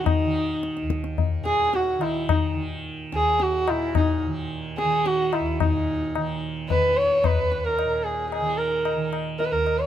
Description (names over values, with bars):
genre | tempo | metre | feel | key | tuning
indian classical, Hindustani | 109 BPM | 5/4 | straight | Eb raga bhairavi | A4 = 442 Hz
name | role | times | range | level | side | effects
dark sarangi | melody | 0.0-9.9 s | Eb4 to Db5+21c | -23 LUFS | right 1 dB | none
tanpura | drone | 0.0-9.9 s | Eb2 to Eb3 | -30 LUFS | right 3 dB | none
tabla | percussion | 0.1-9.9 s | none | -26 LUFS | left 6 dB | none
room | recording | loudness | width
light reverb | none | -21 LUFS | side -10 dB against mid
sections
0.0-5.6 A section; 5.6-9.9 B section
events
speeding up 0.0-9.9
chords
none